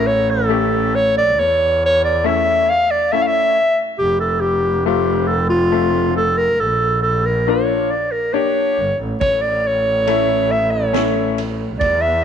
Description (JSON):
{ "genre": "klezmer", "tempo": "69 BPM", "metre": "3/4", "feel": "straight", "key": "A phrygian dominant", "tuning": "A4 = 442 Hz", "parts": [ { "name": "warm clarinet", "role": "melody", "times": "0.0-12.2 s", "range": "F4 to F5", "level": "-16 LUFS", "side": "equal", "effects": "none" }, { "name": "bright upright piano", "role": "accompaniment", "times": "0.0-11.4 s", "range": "A3 to G4", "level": "-21 LUFS", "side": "left 11 dB", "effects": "none" }, { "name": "bright double bass", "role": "bass", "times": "0.0-12.2 s", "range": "F1 to E2", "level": "-22 LUFS", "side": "right 1 dB", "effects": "none" }, { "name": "street-band drum kit", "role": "drums", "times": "9.2-12.0 s", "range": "kick drum, ride cymbal, snare drum", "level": "-28 LUFS", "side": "right 5 dB", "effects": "none" } ], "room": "moderate echo chamber reverb, RT60 2.2 s", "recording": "1960s-style stereo", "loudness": "-14 LUFS", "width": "side -8 dB against mid", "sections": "0.0-12.2 A section", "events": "none", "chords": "0.0 A; 4.0 F; 6.6 Bb; 9.2 A" }